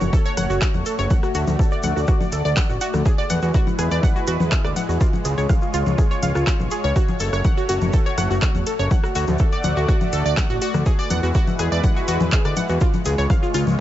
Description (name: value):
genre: melodic techno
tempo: 123 BPM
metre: 4/4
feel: straight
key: F# minor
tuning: A4 = 444 Hz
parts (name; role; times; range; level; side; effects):
- lush unison pad; sustained chords; 0.0-13.8 s; G#3 to D5; -28 LUFS; equal; chorus, phaser, sidechain pumping
- fat analog bass; bass; 0.0-13.8 s; E1 to E2; -22 LUFS; equal; sidechain pumping
- techno drum kit; drums; 0.0-13.8 s; congas, handclaps, hi-hat, rim click; -26 LUFS; left 3 dB; none
- tube shaker; percussion; 0.0-13.8 s; none; -40 LUFS; left 3 dB; none
- analog pluck; arpeggios; 0.1-13.6 s; E#4 to F#5; -25 LUFS; equal; chorus, sidechain pumping, ping-pong delay
- electronic kick drum; drums; 0.1-13.4 s; none; -19 LUFS; equal; none
room: little or no reverb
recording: nothing above 7.7 kHz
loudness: -17 LUFS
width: side -13 dB against mid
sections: 0.0-13.8 A section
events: none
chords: 0.0 F#m; 1.1 D; 3.1 E; 5.0 C#; 7.0 F#m; 8.9 D; 10.9 E; 12.8 C#